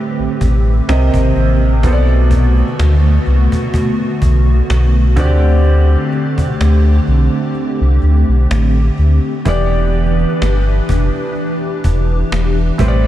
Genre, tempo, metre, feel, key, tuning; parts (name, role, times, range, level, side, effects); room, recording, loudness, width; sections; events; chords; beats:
contemporary R&B; 63 BPM; 4/4; swing 54% on 16ths; E minor; A4 = 440 Hz
felt-muted upright piano; accompaniment; 0.0-13.1 s; A2 to Eb5; -20 LUFS; right 2 dB; lush chorus
hollow soft pad; sustained chords; 0.0-13.1 s; D3 to B4; -19 LUFS; equal; ensemble chorus
sub bass with octave; bass; 0.2-13.1 s; E1 to D2; -12 LUFS; equal
cajon; drums; 0.4-13.0 s; -22 LUFS; equal; vintage 12-bit sampler grit
light reverb, small room ambience; -11 LUFS; side -13 dB against mid
0.0-9.5 A section; 9.5-13.1 B section
kick muted 7.6-9.5
0.0 Am11; 0.9 Cm7; 1.8 Bm7; 5.2 D7sus4; 9.5 Em7
0.88 | 1.84 2.79 3.74 4.69 | 5.65 6.60 7.55 8.50 | 9.46 10.41 11.36 12.31